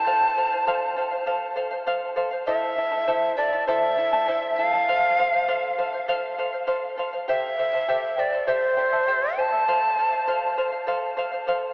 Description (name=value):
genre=andean folk, Andean ensemble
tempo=100 BPM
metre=4/4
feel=straight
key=unclear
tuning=A4 = 440 Hz
part: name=breathy bright large quena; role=melody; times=0.0-10.6 s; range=C5 to A5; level=-23 LUFS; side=equal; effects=none
part: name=charango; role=accompaniment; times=0.0-11.7 s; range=E4 to A5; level=-25 LUFS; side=equal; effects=none
room=wet huge ambient reverb, RT60 7.5 s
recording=in a vast, echoing space, AM radio sound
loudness=-21 LUFS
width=side -28 dB against mid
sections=0.0-11.7 A section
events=none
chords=0.1 F/A; 2.5 Am; 4.9 F/A; 7.3 C; 9.7 F/A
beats=| 0.07 0.67 1.27 1.87 | 2.47 3.07 3.67 4.27 | 4.87 5.47 6.07 6.67 | 7.28 7.88 8.48 9.08 | 9.68 10.28 10.89 11.49